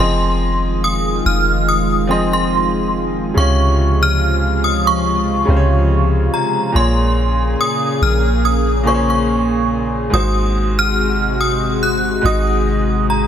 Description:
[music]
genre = contemporary R&B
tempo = 71 BPM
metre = 4/4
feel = swing 54% on 16ths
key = unclear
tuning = A4 = 440 Hz
[part]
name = synth chime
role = melody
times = 0.0-13.3 s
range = Bb5 to Gb6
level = -19 LUFS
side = equal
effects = ensemble chorus, phaser, digital delay
[part]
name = bright baby grand piano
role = accompaniment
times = 0.0-13.3 s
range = Ab2 to Eb5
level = -21 LUFS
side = right 1 dB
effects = none
[part]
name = lush unison pad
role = sustained chords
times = 0.6-13.3 s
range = C3 to Ab4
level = -21 LUFS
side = left 1 dB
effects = chorus
[part]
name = soft 808-style bass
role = bass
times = 0.0-13.3 s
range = F1 to Db2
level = -18 LUFS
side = equal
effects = none
[sound]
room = light reverb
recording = none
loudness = -14 LUFS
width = side -9 dB against mid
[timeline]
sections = 0.0-13.3 A section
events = none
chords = 0.0 Fm7; 3.4 Dbmaj7; 6.7 Bbm7; 10.1 Ab7

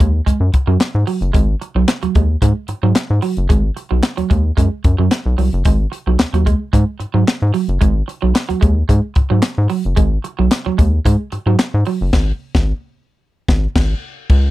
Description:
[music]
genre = funk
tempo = 111 BPM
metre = 4/4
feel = straight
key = unclear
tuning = A4 = 440 Hz
[part]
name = electric guitar at the edge of break-up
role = riff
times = 0.0-12.0 s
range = Gb3 to Ab3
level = -20 LUFS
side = right 7 dB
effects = analog chorus
[part]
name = rubbery square bass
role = bass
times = 0.0-14.5 s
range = Gb1 to Ab2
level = -15 LUFS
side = left 1 dB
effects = none
[part]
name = crisp fusion drum kit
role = drums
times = 0.0-14.4 s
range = crash cymbal, handclaps, hi-hat, kick drum, snare drum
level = -15 LUFS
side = left 1 dB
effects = none
[sound]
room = little or no reverb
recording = dry, close 1970s-style studio recording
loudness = -14 LUFS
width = side -16 dB against mid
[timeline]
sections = 0.0-14.3 A section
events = band accent 12.1-14.3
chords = 0.0 Ab7(no3)

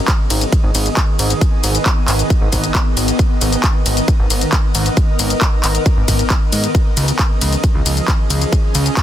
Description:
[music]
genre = uplifting trance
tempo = 135 BPM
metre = 4/4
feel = straight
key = G# dorian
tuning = A4 = 441 Hz
[part]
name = shimmering ambient pad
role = sustained chords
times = 0.0-9.0 s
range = D#3 to D#5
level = -21 LUFS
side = equal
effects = chorus, built-in reverb, sidechain pumping
[part]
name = electronic kick drum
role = drums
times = 0.1-9.0 s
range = none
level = -15 LUFS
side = equal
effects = overdrive
[part]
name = punchy analog drum machine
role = drums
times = 0.1-9.0 s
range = handclaps, hi-hat, ride cymbal, shaker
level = -20 LUFS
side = left 1 dB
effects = none
[part]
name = fat analog bass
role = bass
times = 0.3-8.9 s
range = G#1 to G#2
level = -18 LUFS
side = equal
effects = sidechain pumping
[sound]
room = little or no reverb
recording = dense, heavily limited modern master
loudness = -13 LUFS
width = side -12 dB against mid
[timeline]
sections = 0.0-9.0 A section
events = none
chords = 0.0 G#m; 6.7 C#add9

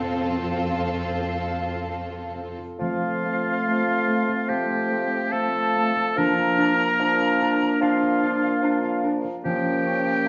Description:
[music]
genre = classical, slow romantic movement for symphony orchestra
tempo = 62-74 BPM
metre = 4/4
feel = rubato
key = F major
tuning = A4 = 441 Hz
[part]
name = clear chamber violin section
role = melody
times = 0.0-2.5 s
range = A4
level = -36 LUFS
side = equal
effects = none
[part]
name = bright small flute group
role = second line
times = 0.0-10.3 s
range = F5 to Bb5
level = -33 LUFS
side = equal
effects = none
[part]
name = rich chamber violin section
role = second line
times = 0.0-2.5 s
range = F4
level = -38 LUFS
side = equal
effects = none
[part]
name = rich chamber viola section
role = accompaniment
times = 0.0-2.5 s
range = C4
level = -34 LUFS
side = equal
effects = none
[part]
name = concert harp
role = arpeggios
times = 0.0-10.3 s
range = F3 to Bb5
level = -36 LUFS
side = equal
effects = none
[part]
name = clear studio cello section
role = bass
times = 0.0-2.6 s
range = F2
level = -34 LUFS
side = equal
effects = none
[part]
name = mellow clarinet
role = second line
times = 2.8-10.0 s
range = A3 to D4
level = -32 LUFS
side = equal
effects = none
[part]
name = warm oboe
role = second line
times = 2.8-10.3 s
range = F4 to Bb4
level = -27 LUFS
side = equal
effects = none
[part]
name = warm bassoon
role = accompaniment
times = 2.8-10.3 s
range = F3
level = -30 LUFS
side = equal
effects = none
[part]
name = mellow French horn section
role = sustained chords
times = 2.8-10.3 s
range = A3 to D4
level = -28 LUFS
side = equal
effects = none
[sound]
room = moderate scoring stage reverb, RT60 1.7 s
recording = dark, warm production, nothing above 7.6 kHz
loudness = -23 LUFS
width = mono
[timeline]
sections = 0.0-2.8 A section; 2.8-10.3 A section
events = none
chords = 0.0 F; 6.2 Bb/F; 9.5 Bbm/F

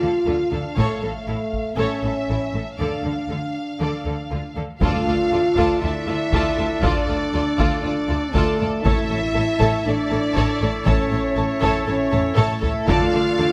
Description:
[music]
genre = cinematic, epic orchestral film score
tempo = 119 BPM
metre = 4/4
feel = straight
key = D harmonic minor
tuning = A4 = 439 Hz
[part]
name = warm symphonic violin section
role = melody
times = 0.0-13.5 s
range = A4 to F5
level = -31 LUFS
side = equal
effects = none
[part]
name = warm symphonic violin section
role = second line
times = 0.0-13.5 s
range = E4 to A5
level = -33 LUFS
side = equal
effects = none
[part]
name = warm symphonic viola section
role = accompaniment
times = 0.0-13.5 s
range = F4 to A4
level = -30 LUFS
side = equal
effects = none
[part]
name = dark French horn section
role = sustained chords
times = 0.0-13.5 s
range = A3 to F4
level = -26 LUFS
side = equal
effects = none
[part]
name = rich symphonic cello section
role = bass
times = 0.0-13.5 s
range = D2 to D3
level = -30 LUFS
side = equal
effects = none
[part]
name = warm studio double bass section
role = bass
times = 0.0-13.5 s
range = A1 to D2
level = -30 LUFS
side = equal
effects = none
[part]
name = taiko ensemble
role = drums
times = 0.8-1.8, 4.8-13.3 s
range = none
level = -28 LUFS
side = equal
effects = none
[part]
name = clear woodwind section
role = sustained chords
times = 4.8-13.5 s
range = A3 to E5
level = -32 LUFS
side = equal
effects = none
[part]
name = timpani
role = percussion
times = 4.8-5.5, 8.9-9.6, 12.9-13.5 s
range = A2 to D3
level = -32 LUFS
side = equal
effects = none
[sound]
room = moderate scoring stage reverb, RT60 1.8 s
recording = none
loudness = -21 LUFS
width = mono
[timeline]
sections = 0.0-4.8 A section; 4.8-13.5 B section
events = drum fill 12.1-12.9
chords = 0.0 Dm; 0.8 A; 2.8 Dm; 8.8 A; 12.9 Dm

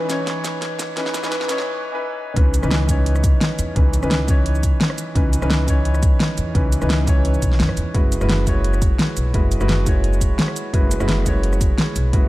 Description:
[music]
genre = liquid drum and bass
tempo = 172 BPM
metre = 4/4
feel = straight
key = C# minor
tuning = A4 = 440 Hz
[part]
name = warm concert grand piano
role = accompaniment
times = 0.0-12.3 s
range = E3 to C#5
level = -23 LUFS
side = equal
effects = tape echo
[part]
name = pop drum kit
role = drums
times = 0.1-12.2 s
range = hi-hat, rim click, shaker, snare drum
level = -23 LUFS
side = equal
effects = high-pass filter on snare, high-pass filter on hats, high-pass filter on perc
[part]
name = upright bass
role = bass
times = 2.4-12.3 s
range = F#1 to F#2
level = -20 LUFS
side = equal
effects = tube saturation
[part]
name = electronic kick drum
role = drums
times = 2.4-12.2 s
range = none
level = -18 LUFS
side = equal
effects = none
[sound]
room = light reverb, studio ambience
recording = dark, warm production, high-pass filter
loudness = -16 LUFS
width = side -17 dB against mid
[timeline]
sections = 0.0-2.4 A section; 2.4-12.3 B section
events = build-up 0.0-2.4; drum fill 0.0-1.7; break 1.7-2.4; drop 2.4-12.3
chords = 0.0 C#m9; 7.9 F#9sus4

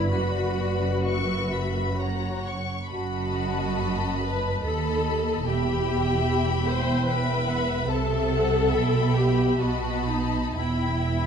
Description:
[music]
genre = classical, slow romantic movement for string orchestra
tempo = 59-75 BPM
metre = 3/4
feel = rubato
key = E minor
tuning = A4 = 440 Hz
[part]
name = rich studio violin section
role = melody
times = 0.0-11.3 s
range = A5 to C#6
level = -33 LUFS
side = left 5 dB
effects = none
[part]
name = rich studio violin section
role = second line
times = 0.0-11.3 s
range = B4 to A5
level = -32 LUFS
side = left 4 dB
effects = none
[part]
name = rich symphonic viola section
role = accompaniment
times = 0.0-11.3 s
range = D#4 to C5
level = -28 LUFS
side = left 1 dB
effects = none
[part]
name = rich symphonic cello section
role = bass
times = 0.0-11.3 s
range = D#2 to C3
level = -29 LUFS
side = right 2 dB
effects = none
[part]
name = warm symphonic double bass section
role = bass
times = 0.0-11.3 s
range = E1 to D#2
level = -28 LUFS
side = right 3 dB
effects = none
[sound]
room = wet recital hall reverb, RT60 1.5 s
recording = dark, warm production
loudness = -23 LUFS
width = side -7 dB against mid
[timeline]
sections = 0.0-11.3 A section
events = none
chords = 0.1 Bm/F#; 2.9 B7/F#; 5.5 Em; 7.9 Am/C; 8.7 Em/B; 9.6 B7; 10.6 Em

